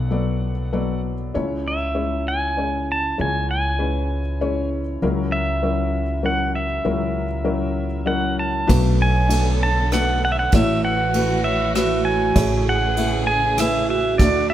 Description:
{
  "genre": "acoustic folk-pop ballad",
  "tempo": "98 BPM",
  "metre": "3/4",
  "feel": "straight",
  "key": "B dorian",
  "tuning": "A4 = 443 Hz",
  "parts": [
    { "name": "pedal steel guitar", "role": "melody", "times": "0.0-14.5 s", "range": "D5 to A5", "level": "-23 LUFS", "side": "right 1 dB", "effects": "none" },
    { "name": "felt-muted upright piano", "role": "accompaniment", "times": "0.0-14.5 s", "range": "A1 to E5", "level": "-24 LUFS", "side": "left 3 dB", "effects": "none" },
    { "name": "upright bass", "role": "bass", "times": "0.0-14.5 s", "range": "A1 to D2", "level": "-24 LUFS", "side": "equal", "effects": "none" },
    { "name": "dark chamber string section", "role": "sustained chords", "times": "8.7-14.5 s", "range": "C#3 to A4", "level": "-28 LUFS", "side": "left 1 dB", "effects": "none" },
    { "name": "soft brush drum kit", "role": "drums", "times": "8.7-14.3 s", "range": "kick drum, ride cymbal, rim click", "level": "-24 LUFS", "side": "right 1 dB", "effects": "none" },
    { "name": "vibraphone with medium mallets", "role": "arpeggios", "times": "9.0-14.5 s", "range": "E4 to C#5", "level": "-25 LUFS", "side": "right 8 dB", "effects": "none" }
  ],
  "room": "moderate recital hall reverb, RT60 1.5 s",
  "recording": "none",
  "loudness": "-18 LUFS",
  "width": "side -12 dB against mid",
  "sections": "0.0-8.7 A section; 8.7-14.5 B section",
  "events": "none",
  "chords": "0.0 Bm7; 1.3 C#m; 5.0 F#7/C#; 8.7 Bm7; 10.5 F#m7/A; 12.4 Amaj7"
}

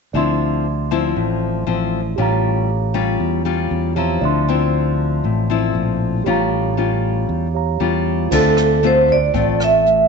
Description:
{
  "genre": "bossa nova",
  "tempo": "117 BPM",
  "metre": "4/4",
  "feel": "straight",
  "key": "D minor",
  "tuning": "A4 = 440 Hz",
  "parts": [
    { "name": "mellow tine electric piano", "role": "accompaniment", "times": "0.1-10.1 s", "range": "F4 to C6", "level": "-24 LUFS", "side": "right 12 dB", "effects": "none" },
    { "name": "nylon-string guitar", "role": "accompaniment", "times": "0.1-10.1 s", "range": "A2 to F4", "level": "-19 LUFS", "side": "left 9 dB", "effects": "none" },
    { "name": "fingered electric bass", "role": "bass", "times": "0.1-10.1 s", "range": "A1 to E2", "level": "-21 LUFS", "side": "right 1 dB", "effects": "none" },
    { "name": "vibraphone with medium hard mallets", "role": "melody", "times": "8.3-10.1 s", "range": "A4 to E5", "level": "-14 LUFS", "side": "right 4 dB", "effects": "none" },
    { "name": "jazz brush drum kit", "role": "drums", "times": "8.3-10.0 s", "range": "crash cymbal, hi-hat, kick drum, rim click", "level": "-27 LUFS", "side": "right 3 dB", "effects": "none" }
  ],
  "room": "light reverb, small room ambience",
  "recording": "1960s-style stereo with parts hard left and right, nothing above 8.0 kHz",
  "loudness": "-15 LUFS",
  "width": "side -5 dB against mid",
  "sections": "0.1-8.3 A section; 8.3-10.1 B section",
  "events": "none",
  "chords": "0.1 Dm9; 2.2 A7b9b13; 4.2 Dm9; 6.3 A7b9b13; 8.3 Dm7"
}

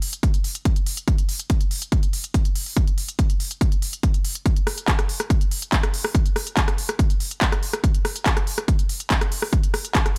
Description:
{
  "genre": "techno",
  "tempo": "142 BPM",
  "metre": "4/4",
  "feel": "straight",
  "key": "none",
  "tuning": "none",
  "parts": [
    { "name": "techno drum kit", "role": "drums", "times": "0.0-10.2 s", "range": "handclaps, hi-hat, rim click", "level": "-28 LUFS", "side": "equal", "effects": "overdrive, sidechain pumping on hats, small room ambience" },
    { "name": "electronic kick drum", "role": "drums", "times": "0.2-10.0 s", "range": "none", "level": "-22 LUFS", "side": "equal", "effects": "overdrive, small room ambience" }
  ],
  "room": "little or no reverb",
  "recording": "none",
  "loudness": "-22 LUFS",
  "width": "mono",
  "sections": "0.0-10.2 A section",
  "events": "none",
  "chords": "none"
}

